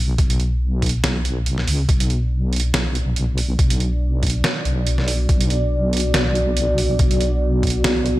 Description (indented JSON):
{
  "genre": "deep dubstep",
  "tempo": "141 BPM",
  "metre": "4/4",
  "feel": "swing 54% on 16ths, half-time",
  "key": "B minor",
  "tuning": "A4 = 440 Hz",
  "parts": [
    { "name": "deep soft wobble bass", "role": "bass", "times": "0.0-8.2 s", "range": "B1 to C#2", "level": "-19 LUFS", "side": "equal", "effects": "chorus" },
    { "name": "electronic kick drum", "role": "drums", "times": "0.2-7.7 s", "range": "none", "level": "-19 LUFS", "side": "equal", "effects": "small room ambience" },
    { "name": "trip hop sampler-style drum kit", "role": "drums", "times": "0.2-8.1 s", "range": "hi-hat, snare drum", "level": "-23 LUFS", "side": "right 1 dB", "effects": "small room ambience" },
    { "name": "dark analog pad", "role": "sustained chords", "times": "2.4-8.2 s", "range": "B3 to D5", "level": "-24 LUFS", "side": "equal", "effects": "chorus" }
  ],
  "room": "digital ambience",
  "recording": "none",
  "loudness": "-17 LUFS",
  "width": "side -17 dB against mid",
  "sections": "0.0-8.2 A section",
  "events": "none",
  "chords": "0.0 Bm"
}